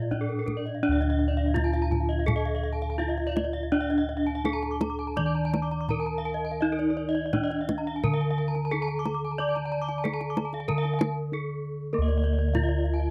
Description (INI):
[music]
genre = Balinese gamelan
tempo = 83-98 BPM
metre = 4/4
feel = straight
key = D pelog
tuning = A4 = 438 Hz
[part]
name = gamelan-type bronze metallophone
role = melody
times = 0.0-13.1 s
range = Bb3-20c to D5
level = -33 LUFS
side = equal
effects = none
[part]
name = gamelan-type bronze metallophone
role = arpeggios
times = 0.0-13.1 s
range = Bb4-20c to D6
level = -38 LUFS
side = equal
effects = none
[part]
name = gamelan-type bossed gongs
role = bass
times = 0.0-13.1 s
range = D2 to D5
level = -30 LUFS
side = equal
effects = none
[part]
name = kendang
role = percussion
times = 0.1-12.9 s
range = none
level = -32 LUFS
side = equal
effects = none
[part]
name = gamelan-type bronze metallophone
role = arpeggios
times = 0.2-13.0 s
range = A4-30c to D6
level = -40 LUFS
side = equal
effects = none
[sound]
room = little or no reverb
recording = dry, close 1970s-style studio recording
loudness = -28 LUFS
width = mono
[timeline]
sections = 0.8-11.9 A section; 11.9-13.1 B section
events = break 11.0-11.9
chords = none